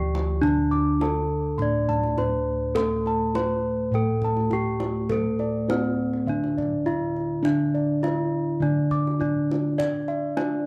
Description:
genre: Javanese gamelan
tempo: 103 BPM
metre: 4/4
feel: straight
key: D slendro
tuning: A4 = 440 Hz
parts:
  - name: gamelan-type bronze metallophone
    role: melody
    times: 0.0-10.7 s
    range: C4-40c to D5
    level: -28 LUFS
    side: equal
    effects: none
  - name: gamelan-type bronze metallophone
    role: accompaniment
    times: 0.0-10.7 s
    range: D3 to D4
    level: -32 LUFS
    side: equal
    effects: none
  - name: gamelan-type bossed gongs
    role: arpeggios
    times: 0.0-10.7 s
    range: C5-40c to D6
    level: -34 LUFS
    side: equal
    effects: none
  - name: gamelan-type bossed gongs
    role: bass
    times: 0.0-10.7 s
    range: D2 to D5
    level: -30 LUFS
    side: equal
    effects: none
  - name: kendang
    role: percussion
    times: 0.1-10.5 s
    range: none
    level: -37 LUFS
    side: equal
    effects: none
room: little or no reverb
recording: dry, close 1970s-style studio recording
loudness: -24 LUFS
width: mono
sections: 0.0-10.7 A section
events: none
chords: none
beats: | 0.43 1.01 1.60 2.18 | 2.77 3.35 3.94 4.52 | 5.11 5.69 6.27 6.86 | 7.44 8.03 8.61 9.20 | 9.78 10.37

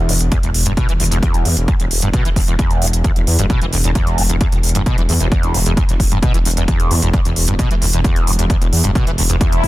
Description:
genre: driving peak-time techno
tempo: 132 BPM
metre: 4/4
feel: straight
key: E minor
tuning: A4 = 442 Hz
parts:
  - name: overdriven acid bass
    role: riff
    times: 0.0-9.7 s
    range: E1 to E3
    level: -20 LUFS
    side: equal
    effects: ensemble chorus, cassette tape, sidechain pumping, ping-pong delay
  - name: dark detuned saw bass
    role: bass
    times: 0.0-9.7 s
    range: E1 to E2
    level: -17 LUFS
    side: equal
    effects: sidechain pumping
  - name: electronic hi-hat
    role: drums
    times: 0.1-9.7 s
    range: none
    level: -21 LUFS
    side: equal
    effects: overdrive
  - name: electronic kick drum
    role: drums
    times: 0.3-9.7 s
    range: none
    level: -16 LUFS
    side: equal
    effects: overdrive
  - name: swell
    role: sound effects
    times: 9.5-9.7 s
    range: none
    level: -20 LUFS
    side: left 5 dB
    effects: none
room: digital ambience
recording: dense, heavily limited modern master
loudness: -13 LUFS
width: side -17 dB against mid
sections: 0.0-9.7 A section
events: swell 9.5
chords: none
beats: 0.32 0.77 | 1.23 1.68 2.13 2.59 | 3.04 3.50 3.95 4.41 | 4.86 5.32 5.77 6.23 | 6.68 7.13 7.59 8.04 | 8.50 8.95 9.41

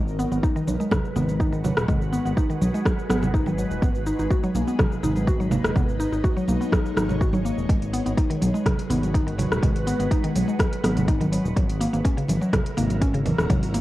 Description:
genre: afro house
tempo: 124 BPM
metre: 4/4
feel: straight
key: G# minor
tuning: A4 = 440 Hz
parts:
  - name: ethereal airy pad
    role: sustained chords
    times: 0.0-13.8 s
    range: F#3 to C#5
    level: -32 LUFS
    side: left 1 dB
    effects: ensemble chorus, built-in reverb, phaser, sidechain pumping, cassette tape
  - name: mallet-like synth pluck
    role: arpeggios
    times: 0.0-13.8 s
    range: C#3 to F#4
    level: -27 LUFS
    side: equal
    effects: chorus, sidechain pumping, cassette tape, tape echo
  - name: smooth gliding synth bass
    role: bass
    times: 0.0-13.8 s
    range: D#1 to B1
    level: -27 LUFS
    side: equal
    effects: sidechain pumping
  - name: deep house drum kit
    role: drums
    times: 0.1-13.8 s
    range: cabasa, hi-hat, rim click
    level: -29 LUFS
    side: left 1 dB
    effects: overdrive, cassette tape
  - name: electronic kick drum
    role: drums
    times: 0.4-13.6 s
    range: none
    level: -23 LUFS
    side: equal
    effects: overdrive, cassette tape
  - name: congas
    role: percussion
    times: 0.7-13.6 s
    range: none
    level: -27 LUFS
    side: right 2 dB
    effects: none
  - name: noise sweep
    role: sound effects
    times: 13.7-13.8 s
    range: none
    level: barely audible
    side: none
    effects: none
room: light reverb, digital ambience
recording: home recording on cassette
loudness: -20 LUFS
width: side -16 dB against mid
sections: 0.0-13.8 A section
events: none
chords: 0.0 G#m7; 3.8 B6; 7.7 G#m7; 11.6 F#7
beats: 0.43 0.92 1.40 | 1.89 2.37 2.85 3.34 | 3.82 4.31 4.79 5.27 | 5.76 6.24 6.72 7.21 | 7.69 8.18 8.66 9.14 | 9.63 10.11 10.60 11.08 | 11.56 12.05 12.53 13.02 | 13.50

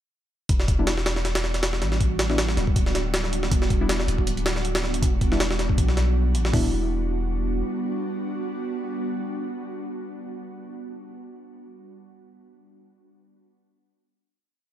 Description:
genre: drum and bass, jungle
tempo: 159 BPM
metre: 4/4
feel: swing 55% on 16ths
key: E minor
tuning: A4 = 440 Hz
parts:
  - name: ethereal airy pad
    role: sustained chords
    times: 1.1-10.3 s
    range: G3 to F#4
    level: -30 LUFS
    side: right 2 dB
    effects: ensemble chorus, built-in reverb
  - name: long sustained 808-style bass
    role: bass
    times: 0.5-7.6 s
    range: D1 to B1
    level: -25 LUFS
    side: equal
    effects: none
  - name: jungle sampler-style drum kit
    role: drums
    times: 0.5-6.6 s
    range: hi-hat, kick drum, snare drum, toms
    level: -24 LUFS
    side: equal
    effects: none
  - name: deep mellow chord stab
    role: stabs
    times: 0.8-11.0 s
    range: G3 to E4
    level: -31 LUFS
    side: left 2 dB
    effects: chorus, cassette tape, dub echo
room: digital ambience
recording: none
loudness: -22 LUFS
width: side -12 dB against mid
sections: 0.5-6.5 drop; 6.5-9.6 final chord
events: drop 0.5-6.5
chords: 0.5 Em7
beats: | 0.50 0.87 1.25 1.63 | 2.01 2.38 2.76 3.14 | 3.52 3.89 4.27 4.65 | 5.03 5.40 5.78 6.16 | 6.53 6.91 7.29 7.67 | 8.04 8.42 8.80 9.18

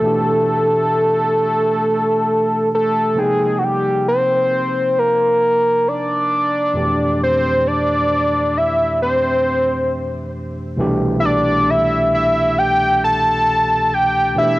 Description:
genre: R&B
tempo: 67 BPM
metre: 4/4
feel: swing 64% on 16ths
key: C major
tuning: A4 = 440 Hz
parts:
  - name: fat analog lead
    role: melody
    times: 0.0-14.6 s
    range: F#4 to A5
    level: -15 LUFS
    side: equal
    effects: chorus, cassette tape
  - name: overdriven tine electric piano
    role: accompaniment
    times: 0.0-14.6 s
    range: C2 to G5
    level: -22 LUFS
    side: right 1 dB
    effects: cassette tape
room: light reverb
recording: home recording on cassette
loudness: -14 LUFS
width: side -18 dB against mid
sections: 0.0-10.8 A section; 10.8-14.6 B section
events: none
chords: 0.0 Gadd9; 3.2 Cm11; 6.7 Fmaj9; 10.8 Cmaj9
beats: | 0.03 0.93 1.82 2.72 | 3.61 4.51 5.41 6.30 | 7.20 8.09 8.99 9.88 | 10.78 11.67 12.57 13.46 | 14.36

